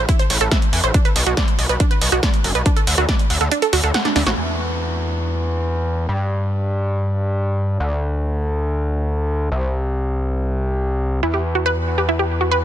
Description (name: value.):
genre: uplifting trance.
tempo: 140 BPM.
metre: 4/4.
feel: straight.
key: E minor.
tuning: A4 = 440 Hz.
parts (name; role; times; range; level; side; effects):
gritty driven synth bass; bass; 0.0-12.6 s; F#1 to G2; -20 LUFS; equal; sidechain pumping.
wide unison pluck; arpeggios; 0.1-4.3, 11.2-12.6 s; D4 to F#5; -21 LUFS; right 3 dB; sidechain pumping, dub echo.
electronic kick drum; drums; 0.1-3.2 s; none; -17 LUFS; equal; overdrive.
punchy analog drum machine; drums; 0.1-4.4 s; hi-hat, rim click, snare drum; -23 LUFS; right 1 dB; none.
room: little or no reverb.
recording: dense, heavily limited modern master.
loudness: -17 LUFS.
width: side -11 dB against mid.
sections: 0.0-4.4 A section; 4.4-12.6 B section.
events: kick drops out 3.5-4.4; drum fill 4.1-4.4; band accent 4.3.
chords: 0.0 A5; 0.9 Bm; 2.7 D; 4.4 N.C.; 11.2 Esus2.